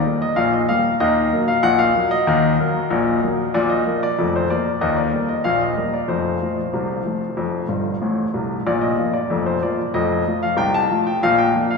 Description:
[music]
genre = ragtime piano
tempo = 94 BPM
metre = 2/4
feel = straight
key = Bb major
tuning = A4 = 440 Hz
[part]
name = warm grand piano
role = solo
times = 0.0-11.8 s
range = F1 to A5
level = -17 LUFS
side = left 2 dB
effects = none
[sound]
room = wet cathedral reverb, RT60 6.4 s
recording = recorded in a church or concert hall, small room ambience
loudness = -17 LUFS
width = side -4 dB against mid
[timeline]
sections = 0.0-11.8 A section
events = grand piano fill 7.7-8.7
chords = 0.0 Eb; 1.0 Ebm; 3.5 Bb5; 4.8 Eb; 6.1 F; 8.7 Bb5; 9.9 F; 11.2 Bb

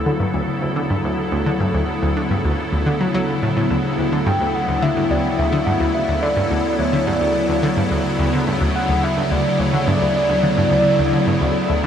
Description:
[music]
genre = ambient, sequencer-driven space music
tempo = 107 BPM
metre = 4/4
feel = straight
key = D major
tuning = A4 = 440 Hz
[part]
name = evolving wavetable pad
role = sustained chords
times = 0.0-11.9 s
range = D2 to A4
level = -19 LUFS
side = equal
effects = ensemble chorus, built-in reverb
[part]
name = analog pluck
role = riff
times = 0.0-11.9 s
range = D2 to F#3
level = -22 LUFS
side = equal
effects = chorus, analog delay
[part]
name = pulse-width lead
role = melody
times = 4.3-11.9 s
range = C#5 to G5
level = -22 LUFS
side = right 1 dB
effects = chorus, analog delay
[sound]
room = wet huge ambient reverb, RT60 7.7 s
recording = cassette tape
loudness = -16 LUFS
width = side -8 dB against mid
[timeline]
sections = 0.0-11.9 A section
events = none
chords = 0.0 Dmaj7

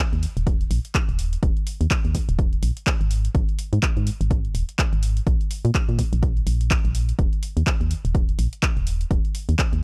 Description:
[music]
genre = piano house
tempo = 125 BPM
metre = 4/4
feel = swing 58% on 16ths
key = unclear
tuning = A4 = 440 Hz
[part]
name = organ-like FM bass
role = bass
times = 0.1-9.8 s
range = Eb1 to Bb2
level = -25 LUFS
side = equal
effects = sidechain pumping
[part]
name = punchy analog drum machine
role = drums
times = 0.1-9.8 s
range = handclaps, hi-hat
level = -31 LUFS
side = equal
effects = overdrive
[part]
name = electronic kick drum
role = drums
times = 0.5-9.7 s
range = none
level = -25 LUFS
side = equal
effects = overdrive
[sound]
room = little or no reverb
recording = dry, gritty hardware recording, transformer saturation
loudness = -23 LUFS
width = mono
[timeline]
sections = 0.0-9.8 A section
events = none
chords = none

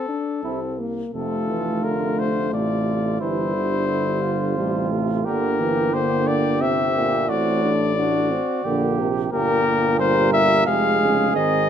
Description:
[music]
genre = classical, brass quintet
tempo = 88 BPM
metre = 3/4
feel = straight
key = F major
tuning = A4 = 438 Hz
[part]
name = warm cornet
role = melody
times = 0.0-11.7 s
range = A4 to F5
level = -23 LUFS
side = left 5 dB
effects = none
[part]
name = mellow French horn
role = accompaniment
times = 0.0-11.7 s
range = G3 to D4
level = -26 LUFS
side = left 3 dB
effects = none
[part]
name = mellow trumpet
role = second line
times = 0.4-11.7 s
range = E4 to Bb4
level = -27 LUFS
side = right 10 dB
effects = none
[part]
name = warm euphonium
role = accompaniment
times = 0.4-11.7 s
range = A2 to E3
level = -26 LUFS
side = right 4 dB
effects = none
[part]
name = mellow tuba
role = bass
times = 0.4-11.7 s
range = F1 to C2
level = -26 LUFS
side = right 3 dB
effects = none
[sound]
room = light reverb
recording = none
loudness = -19 LUFS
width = side -8 dB against mid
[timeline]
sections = 0.0-1.1 A section; 1.1-11.7 B section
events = none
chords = 0.4 C; 1.1 F; 3.2 C/G; 4.6 F/A; 5.3 Gm; 7.3 D7/A; 8.6 Gm/Bb; 9.3 Gmadd11; 10.7 Fm

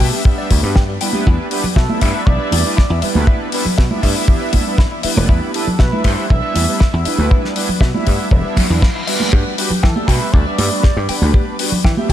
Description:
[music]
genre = nu-disco, nu disco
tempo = 119 BPM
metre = 4/4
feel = straight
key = unclear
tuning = A4 = 441 Hz
[part]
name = mellow synth brass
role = accompaniment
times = 0.0-12.1 s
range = G3 to E5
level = -21 LUFS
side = right 1 dB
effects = chorus, diffuse ambient delay
[part]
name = direct-recorded clean electric guitar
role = riff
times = 0.0-12.1 s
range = E3 to G5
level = -28 LUFS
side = left 4 dB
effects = wide subtle chorus, diffuse ambient delay
[part]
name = dry thumbed slap bass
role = bass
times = 0.0-12.1 s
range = E1 to E3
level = -18 LUFS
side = equal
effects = none
[part]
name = damped 70s drum kit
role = drums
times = 0.0-12.1 s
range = finger snaps, hi-hat, snare drum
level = -23 LUFS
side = left 4 dB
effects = none
[part]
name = kick drum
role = drums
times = 0.3-12.1 s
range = none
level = -13 LUFS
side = equal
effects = none
[part]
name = congas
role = percussion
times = 0.5-12.1 s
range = none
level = -24 LUFS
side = right 2 dB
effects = none
[part]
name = muted trumpet section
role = melody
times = 1.5-11.1 s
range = G4 to E5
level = -26 LUFS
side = right 2 dB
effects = ping-pong delay
[part]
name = reverse cymbal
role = sound effects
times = 8.5-9.3 s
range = none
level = -26 LUFS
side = left 1 dB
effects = none
[sound]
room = light reverb, small room ambience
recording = none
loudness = -13 LUFS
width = side -11 dB against mid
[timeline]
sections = 0.0-12.1 A section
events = reverse cymbal 8.5-9.3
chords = 0.0 G; 1.3 Em7; 9.3 Gmaj7

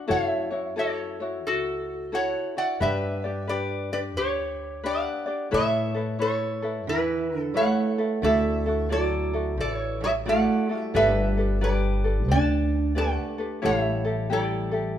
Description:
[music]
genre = Hawaiian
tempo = 89 BPM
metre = 4/4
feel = swing 64% on 8ths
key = unclear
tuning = A4 = 440 Hz
[part]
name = lap resonator guitar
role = melody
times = 0.0-15.0 s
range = E4 to A5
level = -27 LUFS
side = right 1 dB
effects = none
[part]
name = ukulele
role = accompaniment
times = 0.0-15.0 s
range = D4 to D5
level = -30 LUFS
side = left 3 dB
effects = none
[part]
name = upright bass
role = bass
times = 0.1-15.0 s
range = G1 to A2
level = -28 LUFS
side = left 1 dB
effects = none
[part]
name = fingerpicked steel-string acoustic guitar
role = second line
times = 6.9-14.9 s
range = E3 to D4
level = -28 LUFS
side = right 4 dB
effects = none
[sound]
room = moderate recital hall reverb, RT60 1.7 s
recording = minimal, uncompressed stereo recording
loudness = -23 LUFS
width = side -10 dB against mid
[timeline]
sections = 0.0-15.0 A section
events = none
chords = 0.1 F#m7; 2.8 G; 5.5 Aadd9; 8.2 Dadd9; 10.9 Gadd9; 13.6 A7

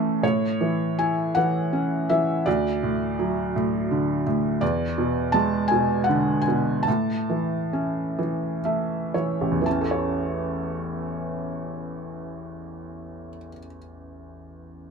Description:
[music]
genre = classical, lyrical solo piano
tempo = 38-56 BPM (dotted quarters)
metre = 6/8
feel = rubato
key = A major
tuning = A4 = 440 Hz
[part]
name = felt-muted upright piano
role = solo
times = 0.0-14.9 s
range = A1 to A5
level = -23 LUFS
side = right 1 dB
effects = none
[sound]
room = moderate studio reverb, RT60 0.8 s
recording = close, detailed microphones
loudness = -22 LUFS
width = side -5 dB against mid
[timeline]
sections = 0.2-9.7 A section; 9.7-12.7 B section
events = slowing down 4.6-9.7; felt piano fill 8.2-9.7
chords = 0.2 A; 2.5 D; 4.6 E7; 6.9 A

